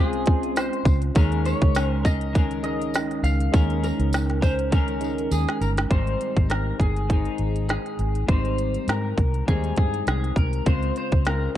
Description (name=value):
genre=indie pop, bedroom pop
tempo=101 BPM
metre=4/4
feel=swing 55% on 16ths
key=Ab major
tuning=A4 = 440 Hz
part: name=clean lap steel guitar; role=melody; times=0.0-11.6 s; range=Ab4 to F5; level=-30 LUFS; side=left 1 dB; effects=lush chorus
part: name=clean electric guitar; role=accompaniment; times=0.0-11.6 s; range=Ab2 to Bb4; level=-30 LUFS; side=left 6 dB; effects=wide subtle chorus, vibrato effect
part: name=overdriven tine electric piano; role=accompaniment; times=0.0-5.9 s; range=Ab3 to C5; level=-29 LUFS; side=right 5 dB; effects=cassette tape
part: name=vintage muted fingered electric bass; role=bass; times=0.0-11.5 s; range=G1 to Ab2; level=-25 LUFS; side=equal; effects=none
part: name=organic electronic drum kit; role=drums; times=0.1-11.4 s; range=hi-hat, kick drum, snare drum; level=-22 LUFS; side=equal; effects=overdrive, vintage 12-bit sampler grit
part: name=tambourine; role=percussion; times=0.6-5.8 s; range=none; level=-43 LUFS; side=right 7 dB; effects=none
room=little or no reverb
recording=dark, warm production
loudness=-20 LUFS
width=side -12 dB against mid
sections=0.0-5.9 A section; 5.9-11.6 B section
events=drum fill 4.7-5.9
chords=0.0 Dbmaj7; 1.2 Eb7sus4; 5.9 Abmaj7; 10.7 Dbmaj7